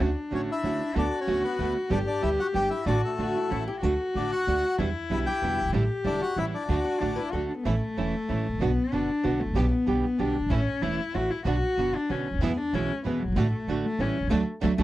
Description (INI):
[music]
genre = tango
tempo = 189 BPM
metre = 3/4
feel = rubato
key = D major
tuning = A4 = 440 Hz
[part]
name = warm cello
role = second line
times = 0.0-14.8 s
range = F#3 to G4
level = -29 LUFS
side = left 2 dB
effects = none
[part]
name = nylon-string guitar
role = accompaniment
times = 0.0-14.8 s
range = B2 to G4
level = -30 LUFS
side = right 4 dB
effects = none
[part]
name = bright studio string section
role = stabs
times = 0.0-14.8 s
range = G3 to A4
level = -37 LUFS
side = right 4 dB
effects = none
[part]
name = upright bass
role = bass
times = 0.0-14.8 s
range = E1 to E2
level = -29 LUFS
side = equal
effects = none
[part]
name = bandoneon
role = melody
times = 0.3-7.3 s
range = A3 to G5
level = -30 LUFS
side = left 3 dB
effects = slapback echo
[part]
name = archtop guitar, miked and amplified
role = second line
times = 3.4-4.1, 6.8-7.7, 14.6-14.8 s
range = A3 to B4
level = -37 LUFS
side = left 3 dB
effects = none
[sound]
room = little or no reverb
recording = dry, close 1970s-style studio recording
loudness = -24 LUFS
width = side -15 dB against mid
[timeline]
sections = 0.0-7.7 A section; 7.7-14.8 B section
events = cello solo 7.7-14.8; band accent 14.3-14.8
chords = 0.0 Dmaj7; 1.0 Bm7/D; 1.9 Gadd9; 2.9 D/A; 3.5 A; 3.8 D; 4.8 Em7; 5.7 A7sus4; 6.4 A7; 6.7 D; 7.7 A; 8.6 Bm; 9.6 G/B; 10.5 A; 11.5 Bm; 12.4 E; 13.4 D/A; 14.0 A7; 14.3 D